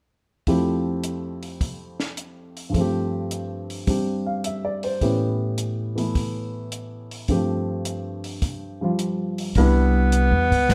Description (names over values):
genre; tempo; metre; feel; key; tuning
jazz, small-group swing and bop; 106 BPM; 4/4; swing 69% on 8ths; unclear; A4 = 439 Hz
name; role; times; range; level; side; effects
warm baby grand piano; accompaniment; 0.5-10.5 s; F2 to F5; -26 LUFS; equal; none
compact cocktail drum kit; drums; 0.5-10.7 s; hi-hat, kick drum, snare drum; -30 LUFS; equal; none
warm tenor saxophone; second line; 9.6-10.7 s; B3; -24 LUFS; equal; none
upright bass; bass; 9.6-10.7 s; G1 to E2; -21 LUFS; equal; none
room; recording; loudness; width
light reverb; dark, warm production; -24 LUFS; mono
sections
0.5-9.6 A section; 9.6-10.7 B section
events
none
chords
0.5 Fmaj7; 2.7 G7sus4; 5.0 A7; 7.3 G7sus4; 9.6 Cmaj7